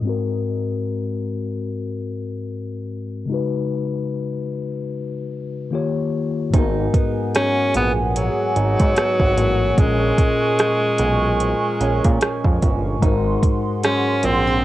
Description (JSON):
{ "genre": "contemporary R&B", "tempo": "74 BPM", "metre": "4/4", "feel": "swing 58% on 16ths", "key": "G# dorian", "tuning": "A4 = 440 Hz", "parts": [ { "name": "mellow tine electric piano", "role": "accompaniment", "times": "0.0-14.6 s", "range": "G#2 to C#5", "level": "-23 LUFS", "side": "left 4 dB", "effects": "medium stereo tremolo, cassette tape" }, { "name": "hollow soft pad", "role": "sustained chords", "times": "6.5-14.6 s", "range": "G#4 to C#6", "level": "-26 LUFS", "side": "right 3 dB", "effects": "chorus, sidechain pumping, cassette tape" }, { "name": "fingerpicked old ladder-braced acoustic guitar", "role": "arpeggios", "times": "6.5-14.6 s", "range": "G#2 to D#4", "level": "-29 LUFS", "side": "right 6 dB", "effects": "cassette tape, analog delay" }, { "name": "fat analog bass", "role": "bass", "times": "6.5-14.6 s", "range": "G1 to A#2", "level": "-22 LUFS", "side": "right 1 dB", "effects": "none" }, { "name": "smooth R&B drum kit", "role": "drums", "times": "6.5-14.5 s", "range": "hi-hat, kick drum, rim click", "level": "-18 LUFS", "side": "right 1 dB", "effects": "cassette tape" }, { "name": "edgy alto saxophone", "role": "melody", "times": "7.4-14.6 s", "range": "F#3 to C#4", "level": "-20 LUFS", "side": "equal", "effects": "analog delay" } ], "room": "moderate small room reverb, RT60 0.5 s", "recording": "home recording on cassette, low-pass filter", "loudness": "-18 LUFS", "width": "side -15 dB against mid", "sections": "0.0-6.5 A section; 6.5-14.6 B section", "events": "filter sweep 0.0-6.5", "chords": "0.0 G#7; 3.3 C#9sus4; 5.7 D#7; 6.5 G#m7; 9.8 A#m7; 13.0 G#7", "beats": "| 0.05 0.86 1.67 2.48 | 3.29 4.10 4.91 5.72 | 6.54 7.34 8.16 8.97 | 9.78 10.59 11.40 12.21 | 13.02 13.83 14.64" }